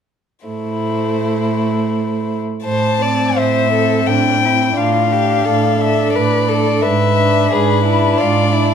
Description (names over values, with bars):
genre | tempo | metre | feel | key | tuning
classical, slow romantic movement for string quartet | 85 BPM | 3/4 | uneven beats, rubato | A minor | A4 = 439 Hz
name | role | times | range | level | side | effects
warm violin | melody | 0.5-8.7 s | B4 to A5 | -18 LUFS | left 8 dB | none
rich violin | second line | 0.5-8.7 s | D4 to D5 | -19 LUFS | left 2 dB | none
dark viola | accompaniment | 0.5-8.7 s | A3 to D4 | -20 LUFS | right 2 dB | none
warm cello | bass | 0.5-8.7 s | G#2 to A2 | -19 LUFS | right 5 dB | none
room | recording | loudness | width
moderate recital hall reverb, RT60 1.4 s | none | -13 LUFS | side -7 dB against mid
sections
0.5-2.6 A section; 2.6-8.7 B section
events
none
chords
0.5 Am; 4.8 Dm/A; 6.8 E7/G#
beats
| 0.46 1.19 1.90 | 2.65 3.36 4.06 | 4.76 5.45 6.14 | 6.83 7.52 8.20